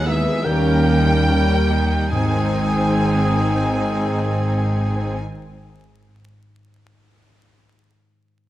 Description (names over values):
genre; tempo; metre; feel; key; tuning
classical; 36 BPM; 3/4; rubato; unclear; A4 = 440 Hz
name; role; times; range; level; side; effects
rich chamber violin section; melody; 0.0-5.2 s; E5 to G#5; -28 LUFS; equal; none
hollow flute section; second line; 0.0-5.2 s; G#4 to B#4; -31 LUFS; left 1 dB; none
rich chamber violin section; second line; 0.0-5.2 s; D#4 to B4; -31 LUFS; left 2 dB; none
warm oboe; second line; 0.0-5.2 s; G#4 to G5; -29 LUFS; right 1 dB; none
rich chamber viola section; accompaniment; 0.0-5.2 s; D#3 to C#4; -29 LUFS; right 1 dB; none
warm bassoon; accompaniment; 0.0-5.2 s; A#3 to B#3; -30 LUFS; equal; none
dark trombone section; sustained chords; 0.0-5.2 s; D#3 to C#4; -29 LUFS; right 3 dB; none
warm French horn section; sustained chords; 0.0-5.2 s; E3 to G#3; -27 LUFS; left 1 dB; none
concert harp; arpeggios; 0.0-6.0 s; G#2 to G#5; -31 LUFS; left 6 dB; none
dark tuba; bass; 0.0-5.2 s; G#1 to D#2; -24 LUFS; right 2 dB; none
rich chamber cello section; bass; 0.0-5.2 s; D#2 to G#2; -26 LUFS; equal; none
rich chamber double bass section; bass; 0.0-5.2 s; G#1 to D#2; -23 LUFS; right 1 dB; none
dark clarinet; second line; 0.5-5.2 s; C#4 to D#4; -29 LUFS; left 2 dB; none
warm trumpet; stabs; 0.5-5.2 s; G#4 to A#4; -30 LUFS; equal; none
timpani; percussion; 2.1-5.2 s; G#2; -31 LUFS; equal; none
room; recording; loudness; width
moderate scoring stage reverb, RT60 1.8 s; vinyl crackle; -16 LUFS; side -14 dB against mid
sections
0.0-2.1 A section; 2.1-7.1 B section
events
slowing down 0.0-2.1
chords
0.4 D#7; 2.1 G#